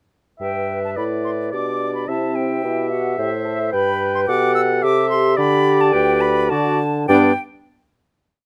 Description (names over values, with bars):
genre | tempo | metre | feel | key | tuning
quick classical-period movement for wind quintet | 108 BPM | 3/4 | rubato | G major | A4 = 440 Hz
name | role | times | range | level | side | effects
silver concert flute | melody | 0.4-7.4 s | E5 to E6 | -26 LUFS | equal | none
clear oboe | second line | 0.4-7.3 s | D5 to G5 | -26 LUFS | equal | none
clear clarinet | accompaniment | 0.4-7.3 s | D4 to C5 | -25 LUFS | equal | none
dark bassoon | bass | 0.4-7.3 s | D2 to D3 | -24 LUFS | equal | none
clear French horn | accompaniment | 1.0-7.3 s | B3 to B4 | -25 LUFS | equal | none
room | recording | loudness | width
light reverb | close, detailed microphones | -19 LUFS | mono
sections
0.4-7.1 A section; 7.1-8.5 final chord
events
none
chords
0.4 G; 1.5 G/B; 2.1 C; 3.7 G; 4.8 C; 5.4 G/D; 6.5 D; 7.1 G